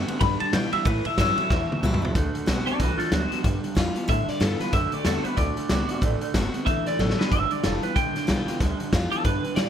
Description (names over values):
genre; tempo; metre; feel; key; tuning
rockabilly; 186 BPM; 4/4; swing 60% on 8ths; D mixolydian; A4 = 441 Hz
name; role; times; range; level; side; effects
picked steel-string acoustic guitar; accompaniment; 0.0-9.7 s; E2 to F#4; -32 LUFS; left 2 dB; none
electric guitar through a small old amp; riff; 0.0-9.7 s; G2 to B3; -30 LUFS; right 4 dB; spring reverb
upright bass; bass; 0.0-9.7 s; F1 to B2; -28 LUFS; equal; none
raw garage drum kit; drums; 0.1-9.7 s; hi-hat, kick drum, ride cymbal, snare drum, toms; -26 LUFS; equal; none
electric guitar through a small old amp; melody; 0.2-9.7 s; F4 to B5; -27 LUFS; left 1 dB; phaser, tape echo
room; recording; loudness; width
little or no reverb; none; -22 LUFS; side -9 dB against mid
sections
0.0-2.1 A section; 2.1-9.7 B section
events
clean electric guitar solo 0.0-2.1; drum fill 1.5-2.1, 7.0-7.3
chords
0.2 G7; 0.9 A7; 2.1 D7; 3.4 G7; 4.7 D7; 7.3 G7